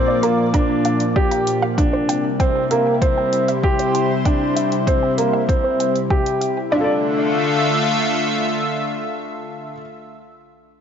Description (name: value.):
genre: piano and strings electronica.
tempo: 97 BPM.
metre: 4/4.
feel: straight.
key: D minor.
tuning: A4 = 440 Hz.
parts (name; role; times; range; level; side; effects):
lush unison pad; sustained chords; 0.0-10.0 s; Bb2 to E5; -20 LUFS; left 1 dB; chorus, sidechain pumping.
warm upright piano; riff; 0.0-9.8 s; Bb3 to D5; -20 LUFS; right 1 dB; tape echo.
analog pluck; arpeggios; 0.1-7.0 s; C5 to Bb5; -28 LUFS; right 1 dB; chorus, cassette tape, sidechain pumping, tape echo.
electronic hi-hat; drums; 0.2-6.5 s; none; -31 LUFS; left 3 dB; none.
electronic kick drum; drums; 0.5-6.2 s; none; -19 LUFS; equal; none.
room: moderate concert hall reverb, RT60 2.0 s.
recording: nothing above 7.6 kHz.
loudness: -16 LUFS.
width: side -8 dB against mid.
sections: 0.0-6.7 A section; 6.7-9.2 B section.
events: none.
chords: 0.0 Bb; 1.8 C; 6.7 Dmadd9.